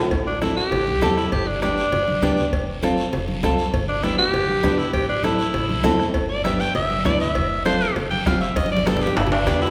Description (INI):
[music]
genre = latin, cumbia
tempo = 199 BPM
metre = 4/4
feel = straight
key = unclear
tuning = A4 = 440 Hz
[part]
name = nylon-string guitar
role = accompaniment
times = 0.0-9.7 s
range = B3 to A4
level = -27 LUFS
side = equal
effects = none
[part]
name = upright bass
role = bass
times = 0.1-9.7 s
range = F1 to E2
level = -31 LUFS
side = equal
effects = none
[part]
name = bombo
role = percussion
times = 0.1-9.6 s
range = none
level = -32 LUFS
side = equal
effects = none
[part]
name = cowbell and timbales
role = percussion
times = 0.1-9.7 s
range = none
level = -32 LUFS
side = equal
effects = none
[part]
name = guiro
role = percussion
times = 0.1-9.7 s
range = none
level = -37 LUFS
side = equal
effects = none
[part]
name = raspy alto saxophone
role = melody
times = 0.3-9.7 s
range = D4 to G5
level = -25 LUFS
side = equal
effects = none
[part]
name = congas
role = percussion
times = 0.4-9.7 s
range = none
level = -29 LUFS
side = equal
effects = none
[sound]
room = wet recital hall reverb, RT60 1.7 s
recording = recorded in a church or concert hall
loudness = -21 LUFS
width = mono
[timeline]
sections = 0.1-9.7 A section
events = alto saxophone solo 0.1-9.7; drum fill 8.6-9.7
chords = 0.1 Am; 1.3 G; 2.5 F; 3.7 G; 4.9 Am; 6.2 G; 7.4 F; 8.6 G